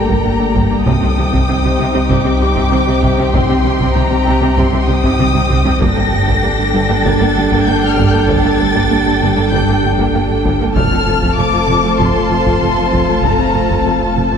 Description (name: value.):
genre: cinematic, hybrid orchestral and electronic film score.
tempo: 97 BPM.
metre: 4/4.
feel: straight.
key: G minor.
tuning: A4 = 440 Hz.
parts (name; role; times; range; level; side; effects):
warm symphonic violin section; melody; 0.0-14.4 s; A5 to Bb6; -20 LUFS; left 3 dB; none.
warm symphonic violin section; second line; 0.0-14.4 s; G4 to A5; -19 LUFS; left 2 dB; none.
warm symphonic viola section; accompaniment; 0.0-14.4 s; F3 to G4; -22 LUFS; right 2 dB; none.
warm analog pad; sustained chords; 0.0-14.4 s; G3 to D5; -18 LUFS; equal; chorus.
soft round pluck; arpeggios; 0.0-14.4 s; C3 to G4; -23 LUFS; equal; chorus, digital delay.
sub bass with octave; bass; 0.0-14.4 s; F1 to C2; -21 LUFS; left 1 dB; none.
rich symphonic cello section; bass; 0.1-14.4 s; F2 to C3; -21 LUFS; right 2 dB; none.
taiko ensemble; drums; 0.1-14.3 s; none; -21 LUFS; equal; none.
rich symphonic double bass section; bass; 0.2-14.2 s; F1 to C2; -21 LUFS; right 4 dB; none.
room: wet concert hall reverb, RT60 2.5 s.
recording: dark, warm production.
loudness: -11 LUFS.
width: side -7 dB against mid.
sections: 0.0-14.4 A section.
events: drum fill 5.2-5.8.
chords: 0.0 Gmadd9; 0.9 Cm; 5.8 Gmadd9; 10.8 F.